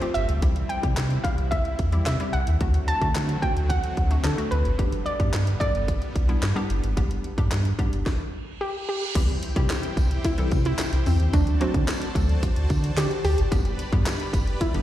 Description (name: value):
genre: dance-pop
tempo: 110 BPM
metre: 4/4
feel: straight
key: C major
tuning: A4 = 440 Hz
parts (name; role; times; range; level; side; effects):
- soft round pluck; melody; 0.0-14.8 s; C4 to A5; -29 LUFS; equal; chorus, digital delay, slapback echo
- hollow square pluck; accompaniment; 0.0-14.8 s; D3 to A4; -32 LUFS; left 1 dB; chorus, sidechain pumping, slapback echo
- supersaw pad; sustained chords; 0.0-14.8 s; D3 to B5; -35 LUFS; right 1 dB; sidechain pumping
- house drum kit; drums; 0.0-14.8 s; crash cymbal, handclaps, hi-hat, kick drum, snare drum; -26 LUFS; equal; none
- sub bass with octave; bass; 0.2-14.8 s; G1 to D3; -24 LUFS; equal; sidechain pumping
- reverse cymbal and impact; sound effects; 8.4-11.3 s; none; -35 LUFS; right 3 dB; slapback echo
- tambourine; percussion; 9.1-14.7 s; none; -44 LUFS; right 1 dB; none
room: little or no reverb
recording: live gig heard through the venue's PA, recital hall reverb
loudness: -21 LUFS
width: side -13 dB against mid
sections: 0.0-9.2 A section; 9.2-14.8 B section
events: stop 8.1-9.2; reverse cymbal 8.4-9.2; impact 9.2-11.3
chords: 0.4 C; 2.6 D7; 4.8 G; 9.2 C; 11.3 D7; 13.5 G